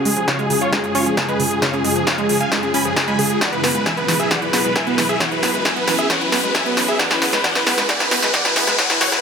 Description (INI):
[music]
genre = uplifting trance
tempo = 134 BPM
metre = 4/4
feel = straight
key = unclear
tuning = A4 = 439 Hz
[part]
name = big supersaw lead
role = melody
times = 0.0-9.2 s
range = E#4 to B5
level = -21 LUFS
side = equal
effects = sidechain pumping, low-pass filter
[part]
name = shimmering ambient pad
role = sustained chords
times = 0.0-9.2 s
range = F#2 to G#4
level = -25 LUFS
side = left 1 dB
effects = chorus, built-in reverb, sidechain pumping
[part]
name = riser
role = sound effects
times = 0.1-9.2 s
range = none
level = -24 LUFS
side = left 1 dB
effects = none
[part]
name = analog pluck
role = arpeggios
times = 0.1-9.2 s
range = C#3 to E4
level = -24 LUFS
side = right 2 dB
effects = chorus, sidechain pumping, ping-pong delay
[part]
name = big-room dance drum kit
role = drums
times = 0.1-9.2 s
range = hi-hat, snare drum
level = -20 LUFS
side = equal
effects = high-pass filter on hats, high-pass filter on snare, high-pass filter on room
[part]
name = electronic kick drum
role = drums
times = 0.3-8.9 s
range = none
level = -27 LUFS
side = equal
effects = high-pass filter on kick, high-pass filter on room
[sound]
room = moderate recital hall reverb, RT60 1.9 s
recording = high-pass filter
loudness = -15 LUFS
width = side -6 dB against mid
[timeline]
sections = 0.0-9.2 A section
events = build-up 0.0-9.2; drum fill 0.0-9.2; filter sweep on synth pluck 0.0-9.2; filter sweep 0.0-9.2; riser 0.1-9.2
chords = 0.0 C#/F#; 3.4 Eadd9/F#; 5.2 F#madd9; 7.0 Eadd9/F#